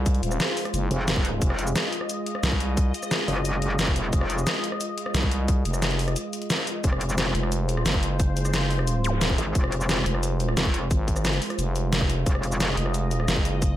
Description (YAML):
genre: dark technical drum and bass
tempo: 177 BPM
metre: 4/4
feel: straight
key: F phrygian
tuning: A4 = 439 Hz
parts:
  - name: sweeping resonant pad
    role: sustained chords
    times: 0.0-13.8 s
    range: Ab3 to Eb5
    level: -31 LUFS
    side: equal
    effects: chorus, sidechain pumping
  - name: growling FM bass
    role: bass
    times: 0.0-2.9, 5.1-13.8 s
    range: Eb1 to C2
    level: -25 LUFS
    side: equal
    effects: none
  - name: dubstep drum kit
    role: drums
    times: 0.1-13.7 s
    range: hi-hat, rim click, shaker, snare drum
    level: -27 LUFS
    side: equal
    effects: none
  - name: electronic kick drum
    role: drums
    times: 0.1-13.7 s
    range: none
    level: -24 LUFS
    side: equal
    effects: overdrive
  - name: metallic wobble bass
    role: bass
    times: 0.9-4.5, 6.8-7.3, 9.4-12.8 s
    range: F1 to Ab1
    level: -26 LUFS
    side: equal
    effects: chorus, sidechain pumping
  - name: zap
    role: sound effects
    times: 9.0-9.1 s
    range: none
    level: -33 LUFS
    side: equal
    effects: none
room: digital ambience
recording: none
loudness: -22 LUFS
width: side -13 dB against mid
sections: 0.0-6.8 A section; 6.8-13.8 A section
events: drop 0.0-6.8, 6.8-13.8; break 6.2-6.8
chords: 0.0 Fm